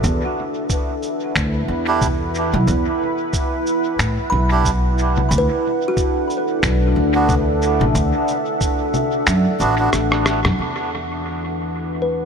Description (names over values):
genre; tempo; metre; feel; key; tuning
ambient dub; 91 BPM; 4/4; swing 58% on 16ths; unclear; A4 = 440 Hz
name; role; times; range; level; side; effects
deep dark ambient pad; sustained chords; 0.0-12.3 s; D4 to G5; -22 LUFS; right 1 dB; chorus, built-in reverb
kalimba; arpeggios; 0.0-12.3 s; F#4 to B5; -26 LUFS; left 2 dB; low-pass filter, tape echo
upright bass; bass; 0.0-12.3 s; A1 to A2; -20 LUFS; equal; none
electronic cabasa, finger snaps, congas and rim click; drums; 0.0-10.6 s; none; -24 LUFS; left 1 dB; studio reverb, dub echo
electronic kick drum; drums; 0.0-8.8 s; none; -23 LUFS; equal; studio reverb
melodica; stabs; 1.9-9.9 s; B3 to G4; -25 LUFS; right 4 dB; low-pass filter, dub echo
room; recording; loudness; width
light reverb, small room ambience; none; -16 LUFS; side -6 dB against mid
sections
0.0-10.6 A section; 10.6-12.3 B section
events
kick drops out 9.3-10.6; drum fill 9.9-10.6; band accent 10.4-10.8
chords
0.0 E7(no3); 5.3 D6; 10.6 Em7